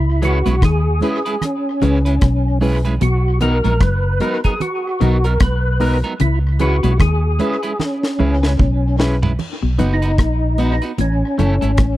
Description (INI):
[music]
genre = roots reggae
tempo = 75 BPM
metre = 4/4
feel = swing 59% on 16ths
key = B major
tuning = A4 = 441 Hz
[part]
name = percussive tonewheel organ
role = melody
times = 0.0-12.0 s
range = C#4 to B4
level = -21 LUFS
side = equal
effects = chorus vibrato, slow rotary speaker, tape echo
[part]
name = semi-hollow electric guitar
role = riff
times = 0.0-12.0 s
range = F#2 to D#3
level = -24 LUFS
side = left 6 dB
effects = warbly pitch drift
[part]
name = vintage muted fingered electric bass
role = bass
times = 0.0-12.0 s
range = F#1 to D#2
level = -16 LUFS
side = equal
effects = none
[part]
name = electric guitar at the edge of break-up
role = accompaniment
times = 0.2-11.7 s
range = F#3 to B4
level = -26 LUFS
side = right 4 dB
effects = harmonic tremolo, tape echo
[part]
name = barky reed electric piano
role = stabs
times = 0.2-11.6 s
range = B3 to C#5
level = -22 LUFS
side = left 2 dB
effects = overdrive, fast tremolo
[part]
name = deep reggae drum kit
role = drums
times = 0.2-12.0 s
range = crash cymbal, hi-hat, kick drum, rim click, snare drum, toms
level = -18 LUFS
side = equal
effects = tape echo
[part]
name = congas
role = percussion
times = 0.2-12.0 s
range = none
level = -26 LUFS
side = right 6 dB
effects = none
[sound]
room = little or no reverb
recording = dry, close 1970s-style studio recording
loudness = -14 LUFS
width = side -15 dB against mid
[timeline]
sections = 0.0-9.4 A section; 9.4-12.0 B section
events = drum fill 7.8-9.4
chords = 0.0 C#m7; 3.0 Bmaj7; 6.2 C#m7; 9.4 B; 11.0 A